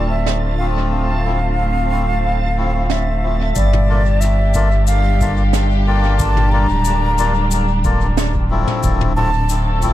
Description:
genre	ambient dub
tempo	91 BPM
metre	4/4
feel	straight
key	G dorian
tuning	A4 = 444 Hz
part	wooden flute	melody	0.0-9.8 s	D5 to Bb5	-22 LUFS	equal	dub echo
part	dark studio string section	sustained chords	0.0-9.9 s	D3 to A4	-25 LUFS	right 1 dB	none
part	melodica	stabs	0.0-9.9 s	F3 to A4	-24 LUFS	left 4 dB	dub echo
part	soft dub sub bass	bass	0.0-9.9 s	D1 to G1	-17 LUFS	equal	tube saturation
part	backwards swelling texture	texture	0.0-3.6 s	A5	-32 LUFS	equal	built-in reverb
part	jazz brush drum kit	drums	0.3-9.9 s	cabasa, snare drum, toms	-26 LUFS	equal	dub echo
part	electronic kick drum	drums	3.6-9.9 s	none	-22 LUFS	equal	none
room	studio ambience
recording	echo-heavy mix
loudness	-14 LUFS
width	side -14 dB against mid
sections	0.0-3.6 A section; 3.6-9.9 B section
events	none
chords	0.0 Dm7; 3.6 Gm7; 8.8 Dm7

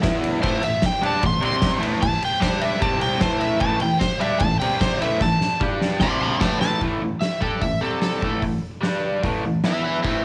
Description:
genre	garage rock duo or trio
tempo	150 BPM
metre	4/4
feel	straight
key	unclear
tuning	A4 = 441 Hz
part	raw garage guitar	riff	0.0-10.2 s	A2 to G4	-26 LUFS	equal	overdrive
part	oversized low-tuned drum kit	drums	0.0-10.1 s	crash cymbal, hi-hat, kick drum, ride cymbal, snare drum	-26 LUFS	equal	cassette tape
part	overdriven slide guitar	melody	0.4-10.2 s	A4 to C6	-26 LUFS	equal	none
room	moderate spring reverb, RT60 1.3 s, small room reverb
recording	home recording on cassette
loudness	-22 LUFS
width	mono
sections	0.0-6.8 A section; 6.8-10.2 B section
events	electric slide guitar solo 0.0-6.8; drum fill 5.2-6.8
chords	0.0 E5; 0.4 A5; 1.4 C5; 1.8 A5; 2.4 G5; 2.8 C5; 3.2 A5; 4.6 C5; 5.0 A5; 5.6 G5; 6.0 C5; 6.4 A; 6.8 A5; 7.8 C5; 8.2 A5; 8.8 G5; 9.2 A5; 9.6 E5

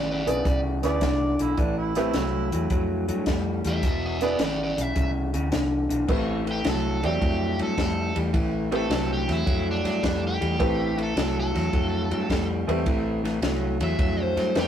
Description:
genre	electric blues shuffle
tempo	106 BPM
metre	4/4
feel	swing 67% on 8ths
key	A minor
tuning	A4 = 441 Hz
part	biting overdriven guitar	melody	0.0-14.7 s	D4 to E5	-30 LUFS	right 1 dB	none
part	electric guitar through a small old amp	riff	0.0-14.7 s	E2 to G3	-27 LUFS	left 1 dB	none
part	vintage muted fingered electric bass	bass	0.0-14.7 s	E1 to G2	-29 LUFS	equal	none
part	clear upright piano	accompaniment	0.3-14.7 s	A3 to D5	-28 LUFS	right 2 dB	none
part	compact cocktail drum kit	drums	0.3-14.7 s	crash cymbal, hi-hat, kick drum, ride cymbal, snare drum	-28 LUFS	equal	none
part	mellow harmonica	second line	0.8-2.9 s	D4 to D5	-31 LUFS	right 4 dB	overdrive
room	moderate stone room reverb, RT60 1.0 s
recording	rough rehearsal-room recording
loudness	-22 LUFS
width	side -9 dB against mid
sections	0.0-6.1 A section; 6.1-14.7 B section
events	overdriven electric guitar solo 6.1-14.7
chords	0.0 E7; 1.6 Am7; 3.8 E7; 6.1 Am7

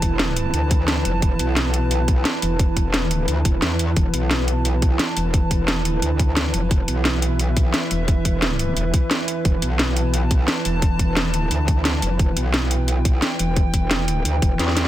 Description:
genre	dark technical drum and bass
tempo	175 BPM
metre	4/4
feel	straight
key	E minor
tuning	A4 = 445 Hz
part	dark analog pad	sustained chords	0.0-14.9 s	E3 to A5	-26 LUFS	right 1 dB	chorus, sidechain pumping
part	metallic wobble bass	bass	0.0-14.9 s	E1 to E2	-21 LUFS	equal	chorus, overdrive
part	drum and bass drum kit	drums	0.0-14.9 s	hi-hat, snare drum	-23 LUFS	equal	none
part	electronic kick drum	drums	0.0-14.5 s	none	-19 LUFS	equal	none
room	little or no reverb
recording	dense, heavily limited modern master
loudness	-18 LUFS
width	side -13 dB against mid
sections	0.0-14.9 A section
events	drum fill 14.6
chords	0.0 E5

